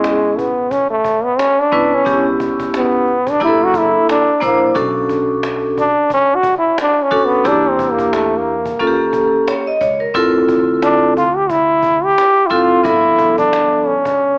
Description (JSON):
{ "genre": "hip hop, jazz-hop", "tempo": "89 BPM", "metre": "4/4", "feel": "swing 58% on 16ths", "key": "unclear", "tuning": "A4 = 440 Hz", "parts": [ { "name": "warm trombone", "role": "melody", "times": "0.0-14.4 s", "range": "G#3 to G4", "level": "-13 LUFS", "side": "equal", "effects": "cassette tape" }, { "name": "vibraphone with hard mallets", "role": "accompaniment", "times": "0.0-13.9 s", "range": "F3 to D#5", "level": "-15 LUFS", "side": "equal", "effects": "cassette tape" }, { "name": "upright bass", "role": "bass", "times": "0.0-14.4 s", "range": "F#1 to E2", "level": "-31 LUFS", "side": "equal", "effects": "none" }, { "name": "cajon", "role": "drums", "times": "0.0-14.3 s", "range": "none", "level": "-28 LUFS", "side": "equal", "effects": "cassette tape" } ], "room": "light reverb, studio reverb", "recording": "home recording on cassette, small speaker sound", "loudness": "-12 LUFS", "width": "side -31 dB against mid", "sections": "0.0-14.4 A section", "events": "trombone solo 0.0-14.4", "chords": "0.0 Amaj9; 2.1 C#m7b5; 3.4 F#7alt; 4.8 Bm9; 7.5 Em7b5; 8.8 D#7#11; 10.2 Dm9; 12.8 G9" }